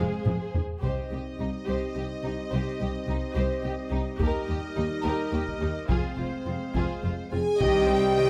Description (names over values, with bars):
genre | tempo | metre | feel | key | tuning
cinematic, epic orchestral film score | 71 BPM (dotted quarters) | 6/8 | straight | C minor | A4 = 440 Hz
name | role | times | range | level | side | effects
warm symphonic violin section | second line | 0.0-8.3 s | C4 to G5 | -38 LUFS | equal | none
rich symphonic viola section | accompaniment | 0.0-8.3 s | Eb3 to Ab4 | -38 LUFS | equal | none
mellow French horn section | sustained chords | 0.0-8.3 s | G3 to Ab4 | -33 LUFS | equal | none
warm woodwind section | sustained chords | 0.0-8.3 s | C4 to F5 | -38 LUFS | equal | none
rich symphonic cello section | bass | 0.0-8.3 s | C2 to F2 | -36 LUFS | equal | none
rich symphonic double bass section | bass | 0.0-8.3 s | F1 to Eb2 | -35 LUFS | equal | none
taiko ensemble | drums | 0.3-8.1 s | none | -32 LUFS | equal | none
rich studio violin section | melody | 0.8-8.3 s | C5 to Ab5 | -42 LUFS | equal | none
bright trombone section | sustained chords | 7.6-8.3 s | none | barely audible | none | none
dark trumpet section | stabs | 7.6-8.3 s | Eb5 | -36 LUFS | equal | none
room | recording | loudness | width
light reverb | close, detailed microphones | -28 LUFS | mono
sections
0.8-7.6 A section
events
drum fill 0.0-0.8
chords
0.0 Fm; 0.8 Cm; 4.2 Eb; 5.9 Fm; 7.6 Cm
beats
| 0.83 1.68 | 2.52 3.36 | 4.20 5.04 | 5.90 6.76 | 7.61